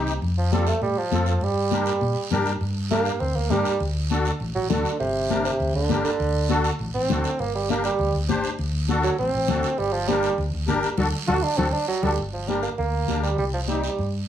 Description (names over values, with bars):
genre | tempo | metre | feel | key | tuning
latin, cumbia | 201 BPM | 4/4 | straight | G harmonic minor | A4 = 444 Hz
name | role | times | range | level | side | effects
musette accordion | accompaniment | 0.0-13.9 s | C4 to C5 | -27 LUFS | left 2 dB | none
hollow-body short-scale fingered electric bass | bass | 0.0-14.2 s | G1 to Bb2 | -26 LUFS | equal | none
guiro | percussion | 0.1-14.3 s | none | -36 LUFS | right 6 dB | none
congas | percussion | 0.2-14.1 s | none | -29 LUFS | left 5 dB | none
warm bassoon | melody | 0.4-14.1 s | C3 to F#4 | -24 LUFS | right 3 dB | none
room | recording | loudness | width
moderate studio reverb, RT60 0.7 s | small room ambience | -21 LUFS | side -10 dB against mid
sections
0.0-2.6 A section; 2.6-12.2 B section; 12.2-14.3 C section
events
bassoon solo 2.6-12.2; drum fill 11.0-12.2; band accent 11.0-12.2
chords
0.2 F; 1.4 Gm; 3.8 D; 5.0 Gm; 6.2 D7; 7.4 Gm; 8.6 D7; 9.8 Gm; 11.0 D; 12.2 Gm; 13.4 Cm